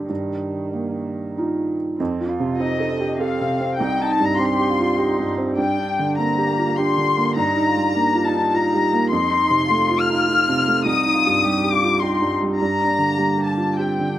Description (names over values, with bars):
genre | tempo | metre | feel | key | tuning
neoclassical piano and strings | 94-106 BPM | 3/4 | rubato | C dorian | A4 = 440 Hz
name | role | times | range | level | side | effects
muted cello | second line | 0.0-14.2 s | Eb3 to G4 | -29 LUFS | right 4 dB | slapback echo
felt-muted upright piano | accompaniment | 0.0-14.2 s | C2 to A4 | -21 LUFS | right 2 dB | none
muted chamber violin section | melody | 2.6-14.2 s | Eb5 to F6 | -20 LUFS | left 4 dB | slapback echo
room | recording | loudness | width
little or no reverb | recorded outdoors, with no room sound | -17 LUFS | side -12 dB against mid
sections
0.0-2.0 A section; 2.0-14.2 B section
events
none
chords
0.1 Ebadd9/G; 2.0 F7; 3.8 Cm; 5.6 Gm; 7.4 Ebadd9/G; 9.1 F7; 10.9 Cm; 12.6 Gm